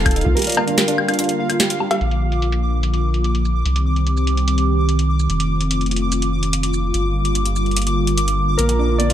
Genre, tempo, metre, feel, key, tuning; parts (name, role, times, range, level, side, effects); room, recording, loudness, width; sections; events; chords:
IDM; 146 BPM; 4/4; straight; Bb major; A4 = 441 Hz
warbly lo-fi synth keys; melody; 0.0-1.6, 8.6-9.1 s; F4 to D5; -24 LUFS; equal; chorus, digital delay
warm analog pad; sustained chords; 0.0-9.1 s; D3 to G4; -23 LUFS; equal; chorus
round analog bass; bass; 0.0-9.1 s; Eb1 to C2; -19 LUFS; equal
pulsing gated texture; texture; 0.0-9.1 s; F5 to D6; -26 LUFS; right 1 dB; chorus, built-in reverb, sidechain pumping
booming analog drum machine; drums; 0.1-9.1 s; cowbell, hi-hat, shaker, snare drum, woodblock; -22 LUFS; left 1 dB; low-pass filter on perc, low-pass filter on hats, low-pass filter on snare
felt-muted upright piano; arpeggios; 0.2-2.0, 8.6-9.1 s; G3 to Bb5; -24 LUFS; right 4 dB; vintage 12-bit sampler grit, low-pass filter, digital delay
moderate echo chamber reverb, RT60 1.4 s; -16 LUFS; side -11 dB against mid
0.0-2.0 A section; 2.0-9.1 B section
0.4 Gm7; 2.0 Bb; 3.7 Cm; 5.3 F7; 6.9 Gm7; 8.6 Bb